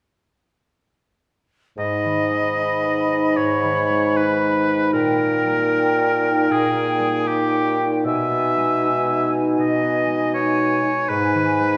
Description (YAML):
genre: classical, slow romantic movement for symphony orchestra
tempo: 77 BPM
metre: 4/4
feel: rubato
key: G# minor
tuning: A4 = 440 Hz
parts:
  - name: clear oboe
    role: second line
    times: 1.8-11.8 s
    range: G4 to E5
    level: -24 LUFS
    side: equal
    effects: none
  - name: mellow flute section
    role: second line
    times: 1.8-11.8 s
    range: G5 to B5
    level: -30 LUFS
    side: equal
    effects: none
  - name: warm clarinet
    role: second line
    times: 1.8-11.8 s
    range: D#4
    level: -29 LUFS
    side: equal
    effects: none
  - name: mellow bassoon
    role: accompaniment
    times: 1.8-11.8 s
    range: G#2 to B2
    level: -26 LUFS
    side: equal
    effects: none
  - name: concert harp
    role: arpeggios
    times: 1.8-11.8 s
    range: G#2 to C#5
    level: -27 LUFS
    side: equal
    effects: none
room: wet scoring stage reverb, RT60 1.6 s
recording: none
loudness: -20 LUFS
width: mono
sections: 1.8-11.8 A section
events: none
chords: 1.8 G#m; 4.9 D#7/A#; 8.1 G#m/B; 11.1 G#m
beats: | 1.77 2.57 3.37 4.15 | 4.93 5.72 6.49 7.26 | 8.07 8.84 9.60 10.36 | 11.11